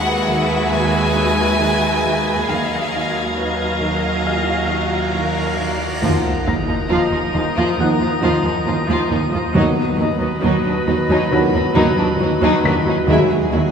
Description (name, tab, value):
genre	cinematic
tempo	68 BPM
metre	4/4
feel	straight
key	unclear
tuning	A4 = 440 Hz
part	clear chamber violin section	melody	0.0-13.7 s	G#4 to G#5	-26 LUFS	left 1 dB	none
part	rich chamber violin section	second line	0.0-13.6 s	B3 to E5	-24 LUFS	left 1 dB	none
part	rich studio viola section	accompaniment	0.0-13.6 s	F3 to F5	-22 LUFS	right 1 dB	none
part	drifting glass-harmonics texture	sustained chords	0.0-13.7 s	Eb4 to B5	-24 LUFS	equal	chorus, built-in reverb
part	warm chamber cello section	riff	0.0-13.7 s	Eb3 to Eb4	-26 LUFS	right 2 dB	none
part	rich chamber cello section	bass	0.0-13.6 s	Eb2	-24 LUFS	right 1 dB	none
part	felt-muted upright piano	texture	0.0-13.7 s	F5 to B6	-28 LUFS	left 2 dB	none
part	rich chamber violin section	texture	0.0-12.6 s	Bb5 to Bb6	-30 LUFS	left 3 dB	none
part	warm studio double bass section	bass	2.5-13.6 s	Eb2	-24 LUFS	right 3 dB	none
part	cymbal swell and sub drop	sound effects	4.7-9.6 s	none	-29 LUFS	equal	none
part	dark French horn section	sustained chords	6.0-13.4 s	G#3 to F#4	-27 LUFS	left 1 dB	none
part	dark trombone section	sustained chords	6.0-13.4 s	Eb3 to G#3	-27 LUFS	right 2 dB	none
part	timpani	percussion	9.5-13.7 s	D#3	-24 LUFS	equal	none
room	wet church reverb, RT60 3.6 s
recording	recorded in a church or concert hall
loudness	-15 LUFS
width	side -7 dB against mid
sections	0.0-6.0 A section; 6.0-13.7 A section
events	cymbal swell 4.7-6.0; impact 6.0-9.6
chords	0.0 Eadd9/Eb; 2.5 Ebmadd9; 6.0 Bbsus4/Eb; 9.6 B/D#; 13.1 Eadd9/Eb